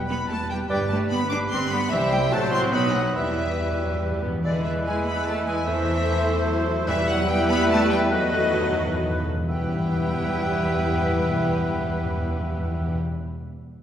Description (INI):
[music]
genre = quick classical-period movement for symphony orchestra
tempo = 124-150 BPM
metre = 3/4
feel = rubato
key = E minor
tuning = A4 = 440 Hz
[part]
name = silver concert flute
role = second line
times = 0.0-13.0 s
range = D5 to D6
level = -33 LUFS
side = left 2 dB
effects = none
[part]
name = warm French horn section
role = sustained chords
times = 0.0-13.0 s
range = F#3 to F#4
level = -32 LUFS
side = left 1 dB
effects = none
[part]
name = clear trumpet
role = stabs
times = 0.0-13.0 s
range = B4 to C5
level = -32 LUFS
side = right 1 dB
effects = none
[part]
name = rich chamber double bass section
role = bass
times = 0.0-13.0 s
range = E1 to E2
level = -29 LUFS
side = right 1 dB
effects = none
[part]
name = rich chamber violin section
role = melody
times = 0.1-13.0 s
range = D5 to D6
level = -31 LUFS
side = left 2 dB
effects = none
[part]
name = rich chamber violin section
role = second line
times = 0.1-13.0 s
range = F#4 to C5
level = -34 LUFS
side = left 2 dB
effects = none
[part]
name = rich studio viola section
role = accompaniment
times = 0.1-13.0 s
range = E3 to F#4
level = -32 LUFS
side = right 2 dB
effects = none
[part]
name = clear studio cello section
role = bass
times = 0.1-13.0 s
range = D3 to D4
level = -30 LUFS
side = right 1 dB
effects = none
[part]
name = clear oboe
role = second line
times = 0.7-13.0 s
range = D5 to F#5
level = -33 LUFS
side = right 3 dB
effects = none
[part]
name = mellow clarinet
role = second line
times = 0.7-13.0 s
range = B4 to C5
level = -35 LUFS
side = left 1 dB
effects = none
[part]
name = clear bassoon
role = accompaniment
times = 0.7-13.0 s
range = F#3 to B3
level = -32 LUFS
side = right 2 dB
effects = none
[part]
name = timpani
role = percussion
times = 3.2-13.0 s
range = E2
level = -29 LUFS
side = left 1 dB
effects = none
[sound]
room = wet scoring stage reverb, RT60 1.9 s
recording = heard from further back in the room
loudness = -21 LUFS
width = side -10 dB against mid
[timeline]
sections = 0.0-4.4 A section; 4.4-9.5 B section; 9.5-12.3 C section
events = timpani fill 3.2-4.4, 8.1-9.5; slowing down 6.3-9.5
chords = 0.0 Em; 0.7 G; 1.9 C; 2.3 F#dim/A; 2.7 B; 3.2 Em; 4.4 E7; 5.7 Am/E; 6.9 Em; 8.1 B7/E; 9.5 Em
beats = 0.29 | 0.70 1.11 1.51 | 1.92 2.33 2.73 | 3.16 3.59 4.02 | 4.44 4.85 5.26 | 5.67 6.08 6.48 | 6.88 7.28 7.70 | 8.12 8.56 9.02 | 9.49 9.96 10.43 | 10.90 11.37 11.84